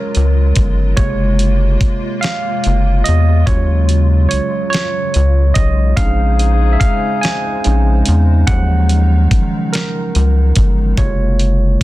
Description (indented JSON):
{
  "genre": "slow six-eight R&B",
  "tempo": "48 BPM (dotted quarters)",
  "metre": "6/8",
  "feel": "straight",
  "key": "unclear",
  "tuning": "A4 = 440 Hz",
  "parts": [
    { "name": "barky tine electric piano", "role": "accompaniment", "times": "0.0-11.8 s", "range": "C3 to Ab5", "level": "-19 LUFS", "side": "right 3 dB", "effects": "overdrive, plate reverb" },
    { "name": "hollow soft pad", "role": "sustained chords", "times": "0.0-11.0 s", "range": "C3 to C5", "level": "-25 LUFS", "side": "left 3 dB", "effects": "ensemble chorus, plate reverb" },
    { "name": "dusty soul sampler-style drum kit", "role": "drums", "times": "0.1-11.8 s", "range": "hi-hat, kick drum, snare drum", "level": "-16 LUFS", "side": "equal", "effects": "none" },
    { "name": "rubbery square bass", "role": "bass", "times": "0.2-11.8 s", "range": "Gb1 to E2", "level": "-12 LUFS", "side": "equal", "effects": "none" },
    { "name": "dark horn section", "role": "stabs", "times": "6.0-8.0 s", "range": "Eb4 to Ab4", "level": "-24 LUFS", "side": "left 11 dB", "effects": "plate reverb" }
  ],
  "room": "light reverb",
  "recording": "dense, heavily limited modern master",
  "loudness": "-11 LUFS",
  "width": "side -16 dB against mid",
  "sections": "0.0-11.8 A section",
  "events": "tine electric piano solo 0.0-11.8",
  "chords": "0.0 Ebm11 (rootless); 1.0 Gbmaj9#11; 3.5 Ebm11; 6.0 Bbm11; 8.5 Ebm11; 11.0 Gbmaj9#11"
}